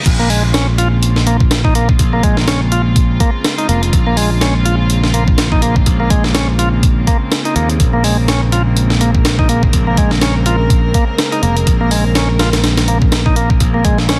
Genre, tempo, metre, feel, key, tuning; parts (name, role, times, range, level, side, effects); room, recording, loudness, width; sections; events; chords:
breakbeat, breaks; 124 BPM; 4/4; swing 57% on 16ths; Bb minor; A4 = 440 Hz
dark studio string section; sustained chords; 0.0-14.2 s; Db3 to Bb4; -23 LUFS; equal; vintage 12-bit sampler grit, sidechain pumping
modern bright picked electric bass; bass; 0.1-14.2 s; F1 to Eb2; -17 LUFS; equal
breakbeat sampler-style drum kit; drums; 0.1-14.2 s; crash cymbal, hi-hat, kick drum, snare drum; -17 LUFS; equal
bright tonewheel organ; riff; 0.2-14.2 s; Ab3 to F4; -21 LUFS; equal; tape echo
little or no reverb; dense, heavily limited modern master, vinyl crackle; -13 LUFS; mono
0.1-14.2 A section
drop 0.1-14.2
0.1 Bbm9